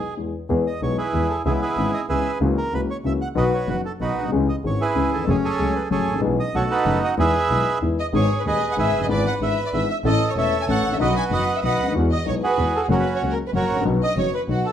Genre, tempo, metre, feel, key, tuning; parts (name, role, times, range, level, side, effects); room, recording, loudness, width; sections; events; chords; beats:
tango; 189 BPM; 3/4; rubato; E major; A4 = 439 Hz
bandoneon; melody; 0.0-14.7 s; B3 to G#5; -23 LUFS; right 4 dB
warm studio violin section; second line; 0.0-0.1, 8.0-14.7 s; F#4 to G#5; -27 LUFS; left 3 dB
warm concert grand piano; accompaniment; 0.2-14.6 s; D#1 to A4; -23 LUFS; left 4 dB
rich double bass; bass; 0.5-14.6 s; E1 to E2; -26 LUFS; right 2 dB
moderate large studio reverb, RT60 0.8 s; -19 LUFS; side -9 dB against mid
0.5-14.7 A section
break 0.0-0.5
0.5 E; 1.5 C#m7; 2.4 F#7/C#; 3.4 B; 4.3 C#m; 5.3 F#madd9; 6.2 E/B; 6.5 B7; 7.2 Emaj7; 8.1 G#m; 9.1 E7/G#; 10.0 A; 11.0 B; 11.9 Eadd9; 12.9 F#; 13.8 B
0.17 | 0.49 0.81 1.13 | 1.45 1.77 2.09 | 2.41 2.73 3.04 | 3.36 3.68 4.00 | 4.32 4.64 4.96 | 5.28 5.59 5.91 | 6.23 6.54 6.86 | 7.18 7.49 7.81 | 8.13 8.45 8.77 | 9.09 9.40 9.72 | 10.04 10.35 10.67 | 10.99 11.30 11.62 | 11.94 12.26 12.58 | 12.90 13.21 13.53 | 13.85 14.17 14.48